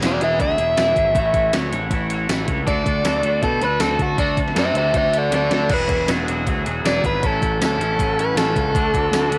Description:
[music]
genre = indie rock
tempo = 158 BPM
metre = 4/4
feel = straight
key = D lydian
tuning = A4 = 435 Hz
[part]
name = twangy electric guitar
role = riff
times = 0.0-9.4 s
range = A2 to C#5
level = -28 LUFS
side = equal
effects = double-tracked
[part]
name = fuzz picked electric bass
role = bass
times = 0.0-9.4 s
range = E1 to B2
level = -26 LUFS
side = equal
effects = overdrive
[part]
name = clean 12-bit digital drum machine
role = drums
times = 0.0-9.4 s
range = crash cymbal, hi-hat, kick drum, snare drum, tambourine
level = -26 LUFS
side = equal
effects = overdrive
[part]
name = overdriven electric guitar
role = melody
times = 0.1-9.4 s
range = D4 to E5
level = -22 LUFS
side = equal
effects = cassette tape, tape echo
[part]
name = tonewheel organ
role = sustained chords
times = 5.7-9.4 s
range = G#4 to E6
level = -35 LUFS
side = equal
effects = none
[sound]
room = moderate spring reverb, RT60 1.3 s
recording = home recording on cassette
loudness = -19 LUFS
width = mono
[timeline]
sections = 0.0-9.4 A section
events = overdriven electric guitar solo 0.0-9.4; drum fill 5.3-5.7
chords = 0.0 Eadd9; 1.2 A6; 2.7 D; 5.7 Eadd9; 7.2 A6; 8.7 D

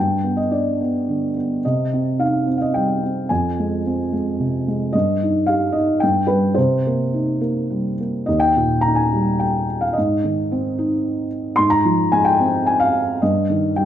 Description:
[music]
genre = classical, lyrical solo piano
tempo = 109 BPM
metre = 3/4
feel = rubato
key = C minor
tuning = A4 = 440 Hz
[part]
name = felt-muted upright piano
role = solo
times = 0.0-13.9 s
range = Eb2 to C6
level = -17 LUFS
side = equal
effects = none
[sound]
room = moderate recital hall reverb, RT60 1.3 s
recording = dark, warm production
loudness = -17 LUFS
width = side -10 dB against mid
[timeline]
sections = 0.0-8.3 A section; 8.3-13.9 B section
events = none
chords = 0.0 G; 1.6 Cm; 3.3 Fm; 4.9 Ebadd9/G; 6.0 N.C.; 6.6 Cm7; 8.3 Eb; 10.0 Ab; 11.6 Fm/Ab; 13.2 Eb/G

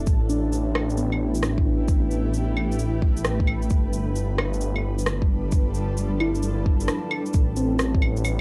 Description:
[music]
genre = future garage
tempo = 132 BPM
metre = 4/4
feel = swing 65% on 16ths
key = unclear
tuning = A4 = 440 Hz
[part]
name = muted felt-like synth keys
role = accompaniment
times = 0.0-8.4 s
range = B3 to E4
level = -31 LUFS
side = equal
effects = chorus, vintage 12-bit sampler grit, sidechain pumping, tape echo
[part]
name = granular cloud pad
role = sustained chords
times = 0.0-8.4 s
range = F3 to B4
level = -33 LUFS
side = equal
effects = built-in reverb, vintage 12-bit sampler grit, sidechain pumping
[part]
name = swelling detuned saw bass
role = bass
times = 0.0-8.4 s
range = G1 to A1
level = -28 LUFS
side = equal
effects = sidechain pumping
[part]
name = electronic kick drum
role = drums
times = 0.1-8.0 s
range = none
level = -24 LUFS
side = equal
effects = small room ambience, cassette tape
[part]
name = electronic shaker, rim click and claves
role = drums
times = 0.1-8.4 s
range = none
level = -31 LUFS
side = equal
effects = small room ambience, cassette tape
[sound]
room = light reverb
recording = home recording on cassette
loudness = -23 LUFS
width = mono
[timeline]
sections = 0.0-7.3 A section; 7.3-8.4 B section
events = break 6.9-7.3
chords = 0.1 A5; 3.7 G7; 7.3 Am7

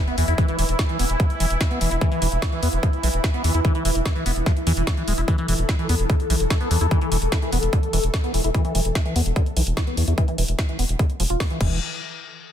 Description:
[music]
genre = psychedelic trance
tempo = 147 BPM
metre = 4/4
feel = straight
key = unclear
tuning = A4 = 440 Hz
[part]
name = bubbling stepped-filter texture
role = sustained chords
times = 0.0-11.6 s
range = E3 to A4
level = -28 LUFS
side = left 1 dB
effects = chorus, built-in reverb, vintage 12-bit sampler grit, sidechain pumping
[part]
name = liquid acid bass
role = riff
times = 0.0-11.8 s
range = D3 to F4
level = -28 LUFS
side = left 1 dB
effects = phaser, auto-pan, cassette tape, sidechain pumping, dub echo
[part]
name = drum and bass drum kit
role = drums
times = 0.1-11.7 s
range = crash cymbal, hi-hat, snare drum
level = -28 LUFS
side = equal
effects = overdrive
[part]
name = round analog bass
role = bass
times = 0.2-11.8 s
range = D1 to E2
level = -22 LUFS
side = equal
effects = none
[part]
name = electronic kick drum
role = drums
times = 0.4-11.7 s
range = none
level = -21 LUFS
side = equal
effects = none
[sound]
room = light reverb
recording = dense, heavily limited modern master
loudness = -19 LUFS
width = side -10 dB against mid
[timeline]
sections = 0.0-11.8 A section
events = filter sweep on acid bass 0.0-11.8; filter sweep on synth texture 0.0-11.8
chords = 0.0 E5; 11.6 N.C.

